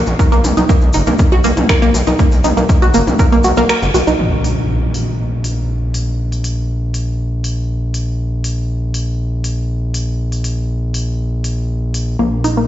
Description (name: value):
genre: melodic techno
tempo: 120 BPM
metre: 4/4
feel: straight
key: unclear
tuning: A4 = 440 Hz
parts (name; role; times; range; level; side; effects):
- gritty driven synth bass; bass; 0.0-12.7 s; F#1 to B1; -17 LUFS; equal; sidechain pumping
- techno drum kit; drums; 0.1-12.5 s; finger snaps, hi-hat, toms; -23 LUFS; left 1 dB; none
- cabasa; percussion; 0.1-4.2 s; none; -30 LUFS; left 4 dB; none
- wide unison pluck; arpeggios; 0.2-4.2, 12.2-12.6 s; A#3 to A#4; -16 LUFS; right 1 dB; sidechain pumping, tape echo
- electronic kick drum; drums; 0.2-3.3 s; none; -13 LUFS; equal; none
- impact; sound effects; 4.2-6.2 s; none; -22 LUFS; equal; none
room: light reverb, digital ambience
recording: played on a big sound system in a bare room, large studio reverb, nothing above 7.8 kHz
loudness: -13 LUFS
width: side -12 dB against mid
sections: 0.0-4.2 A section; 4.2-12.7 B section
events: break 3.7-4.2; band accent 3.7; impact 4.2-6.2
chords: 0.2 Bmaj7(no3); 4.2 N.C.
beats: | 0.19 0.69 1.19 1.69 | 2.19 2.69 3.19 3.69 | 4.19 4.69 5.19 5.69 | 6.19 6.69 7.19 7.69 | 8.19 8.69 9.19 9.69 | 10.19 10.69 11.19 11.69 | 12.19